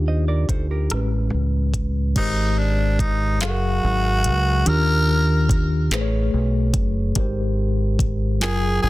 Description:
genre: slow six-eight R&B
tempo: 48 BPM (dotted quarters)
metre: 6/8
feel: straight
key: unclear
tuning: A4 = 439 Hz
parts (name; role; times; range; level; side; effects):
- mellow tine electric piano; accompaniment; 0.0-8.9 s; A2 to F5; -25 LUFS; left 2 dB; medium stereo tremolo
- deep dub fingered electric bass; bass; 0.0-8.9 s; Gb1 to Eb2; -21 LUFS; equal; none
- semi-hollow electric guitar; second line; 0.1-1.1 s; G4 to Eb5; -32 LUFS; right 5 dB; none
- smooth R&B drum kit; drums; 0.5-8.6 s; crash cymbal, handclaps, hi-hat, kick drum, rim click; -23 LUFS; equal; none
- growling tenor saxophone; melody; 2.2-8.9 s; D4 to Bb4; -23 LUFS; equal; digital delay
room: digital ambience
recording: dense, heavily limited modern master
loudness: -18 LUFS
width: side -18 dB against mid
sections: 0.0-2.2 A section; 2.2-8.9 B section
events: none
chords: 0.0 Ebmaj9; 0.9 Amaj9; 2.2 Abmaj9; 3.4 Gbmaj9; 4.7 Ebmaj9; 5.9 Amaj9; 7.2 Abmaj9

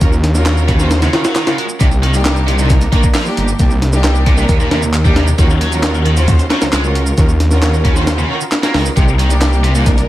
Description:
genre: breakbeat, breaks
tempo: 134 BPM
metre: 4/4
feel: straight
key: unclear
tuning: A4 = 441 Hz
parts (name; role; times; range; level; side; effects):
- clear symphonic string section; stabs; 0.0-10.1 s; Bb3 to C5; -20 LUFS; right 1 dB; dub echo
- detuned saw bass; bass; 0.0-10.0 s; G1 to Eb2; -14 LUFS; equal; tube saturation
- breakbeat sampler-style drum kit; drums; 0.0-10.1 s; hi-hat, kick drum, snare drum; -14 LUFS; equal; none
- electronic shaker and handclaps; drums; 0.0-10.1 s; none; -25 LUFS; right 1 dB; none
- high-gain distorted guitar; riff; 0.7-9.9 s; Bb2 to Bb3; -21 LUFS; equal; distortion, dub echo
- vibraphone with medium mallets; melody; 4.4-4.6 s; Bb4; -29 LUFS; right 2 dB; none
room: digital ambience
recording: vinyl crackle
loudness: -11 LUFS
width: side -15 dB against mid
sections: 0.0-10.1 A section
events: none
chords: 0.0 Ebm9; 1.8 Cm9; 5.4 Ebm9; 9.0 Cm9

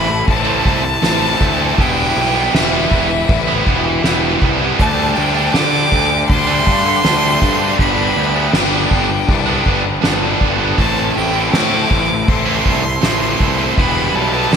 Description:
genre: post-rock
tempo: 80 BPM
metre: 4/4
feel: straight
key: G major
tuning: A4 = 440 Hz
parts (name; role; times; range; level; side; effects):
- bright violin; melody; 0.0-14.6 s; E5 to E6; -20 LUFS; right 1 dB; tape echo
- muted studio string section; sustained chords; 0.0-14.6 s; D4 to A5; -26 LUFS; equal; none
- distorted electric guitar; riff; 0.0-14.6 s; G2 to E4; -20 LUFS; left 10 dB; overdrive
- distorted electric guitar; riff; 0.0-14.6 s; G2 to E4; -20 LUFS; right 11 dB; overdrive, slapback echo
- fuzz picked electric bass; bass; 0.0-14.6 s; E1 to D3; -20 LUFS; equal; overdrive
- soft-mallet drum kit; drums; 0.3-14.6 s; crash cymbal, kick drum, snare drum; -18 LUFS; equal; none
room: moderate lush hall reverb, RT60 2.7 s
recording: big arena sound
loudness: -12 LUFS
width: side -7 dB against mid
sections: 0.0-14.6 A section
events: none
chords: 0.0 Am; 1.8 Em; 4.8 Dsus4; 7.8 Gadd9; 10.8 Am; 13.8 Em

